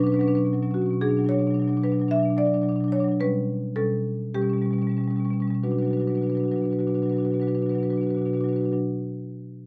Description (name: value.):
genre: classical, contemporary piece for solo marimba.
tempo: 88-111 BPM.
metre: 4/4.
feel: rubato.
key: B minor.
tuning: A4 = 440 Hz.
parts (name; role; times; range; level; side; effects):
marimba with medium hard mallets; solo; 0.0-8.8 s; B2 to E5; -24 LUFS; equal; none.
room: light reverb.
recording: none.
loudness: -24 LUFS.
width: mono.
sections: 0.0-1.0 A section; 1.0-5.6 B section; 5.6-9.7 C section.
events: slowing down 0.0-5.6.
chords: 0.0 Bmadd9; 1.0 Bm; 3.2 A9/B; 5.6 Bm.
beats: 0.46 | 1.02 1.56 2.11 2.65 | 3.20 3.76 4.34 4.96 | 5.63 6.29 6.93 7.58 | 8.24.